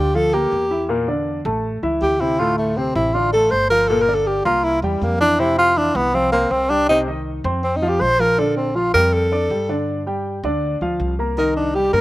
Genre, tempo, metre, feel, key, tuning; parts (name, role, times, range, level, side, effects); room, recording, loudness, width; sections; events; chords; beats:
jazz; 160 BPM; 4/4; straight; F major, Bb major from 8.4 s; A4 = 442 Hz
breathy tenor saxophone; melody; 0.0-12.0 s; G3 to C5; -17 LUFS; equal; slapback echo
warm grand piano; accompaniment; 0.0-12.0 s; A2 to D6; -22 LUFS; equal; slapback echo
upright bass; bass; 0.0-12.0 s; G1 to G2; -25 LUFS; equal
little or no reverb; recorded outdoors, with no room sound; -16 LUFS; side -17 dB against mid
0.0-8.4 A section; 8.4-12.0 A section
tenor saxophone solo 0.0-12.0
0.0 Gm7; 0.9 Bbmaj7#11; 1.6 A; 2.4 Dm7; 3.9 Gmadd11; 4.6 C7; 5.4 Fsus2; 6.9 Cm; 7.6 F5; 8.4 Bb6; 9.9 G5; 11.4 Cm7
0.15 0.52 | 0.90 1.27 1.65 2.02 | 2.40 2.77 3.15 3.52 | 3.90 4.27 4.64 5.02 | 5.39 5.77 6.14 6.52 | 6.89 7.26 7.64 8.01 | 8.39 8.76 9.13 9.51 | 9.88 10.26 10.63 11.00 | 11.38 11.75